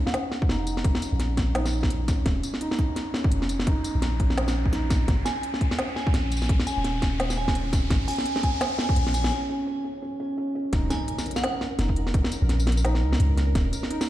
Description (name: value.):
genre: half-time drum and bass.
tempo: 170 BPM.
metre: 4/4.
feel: swing 59% on 16ths, half-time.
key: Eb minor.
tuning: A4 = 440 Hz.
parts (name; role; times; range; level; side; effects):
felt-muted upright piano; arpeggios; 0.0-14.1 s; Db4 to Eb4; -31 LUFS; right 1 dB; tape echo.
riser and impact; sound effects; 0.0-12.1 s; none; -38 LUFS; equal; none.
glassy synth bell; melody; 0.1-0.4, 5.3-11.7 s; Gb5 to Ab5; -33 LUFS; right 1 dB; chorus, phaser, vintage 12-bit sampler grit, low-pass filter, tape echo.
organic electronic drum kit; drums; 0.1-14.1 s; hi-hat, snare drum, tambourine; -29 LUFS; equal; none.
electronic kick drum; drums; 0.4-13.6 s; none; -24 LUFS; equal; overdrive.
long sustained 808-style bass; bass; 0.5-13.7 s; Eb1 to Db2; -25 LUFS; equal; none.
pulsing gated texture; texture; 10.9-14.1 s; Bb4; -38 LUFS; right 2 dB; chorus, built-in reverb.
room: light reverb, digital ambience.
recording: played on a big sound system in a bare room, stone room reverb.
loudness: -22 LUFS.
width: side -14 dB against mid.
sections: 0.0-10.7 A section; 10.7-14.1 B section.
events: build-up 0.0-10.7; riser 0.0-9.3; filter sweep on synth bell 0.0-10.7; break 9.3-10.7; drop 10.7-14.1; impact 10.7-12.1.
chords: 0.0 Eb5; 5.1 Ab5; 10.7 Eb5.